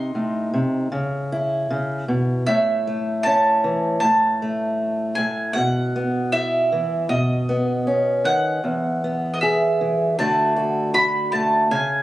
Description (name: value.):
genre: acoustic folk duo or small band.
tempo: 78 BPM.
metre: 4/4.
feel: straight.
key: E major.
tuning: A4 = 443 Hz.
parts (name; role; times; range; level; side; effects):
mandolin; melody; 0.0-12.0 s; D#5 to C6; -21 LUFS; right 1 dB; none.
fingerpicked acoustic archtop guitar; accompaniment; 0.0-12.0 s; E2 to G#4; -21 LUFS; equal; none.
room: light reverb.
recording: recorded on a phone in the room, club reverb.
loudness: -18 LUFS.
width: side -15 dB against mid.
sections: 0.0-8.6 A section; 8.6-12.0 B section.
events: none.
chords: 0.0 Adim; 0.9 C#m; 2.5 A; 4.0 N.C.; 5.6 Bsus4; 7.1 Badd9; 8.6 E; 10.2 D.